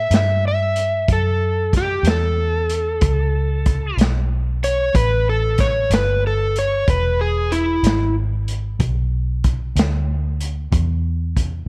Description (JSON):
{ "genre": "slow blues", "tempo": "62 BPM (dotted quarters)", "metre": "12/8", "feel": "straight", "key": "unclear", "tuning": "A4 = 440 Hz", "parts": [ { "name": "overdriven slide guitar", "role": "melody", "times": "0.0-8.1 s", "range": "E4 to E5", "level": "-22 LUFS", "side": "equal", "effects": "none" }, { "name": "vintage muted fingered electric bass", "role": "bass", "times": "0.0-11.7 s", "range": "E1 to G2", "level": "-22 LUFS", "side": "equal", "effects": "none" }, { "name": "vintage drum kit", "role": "drums", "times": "0.1-11.5 s", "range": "hi-hat, kick drum, snare drum", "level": "-23 LUFS", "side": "equal", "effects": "none" } ], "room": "light reverb, small room ambience", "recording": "dark, warm production", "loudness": "-19 LUFS", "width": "mono", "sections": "0.0-11.7 A section", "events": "electric slide guitar solo 0.0-11.7", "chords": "0.0 A9; 6.9 E7" }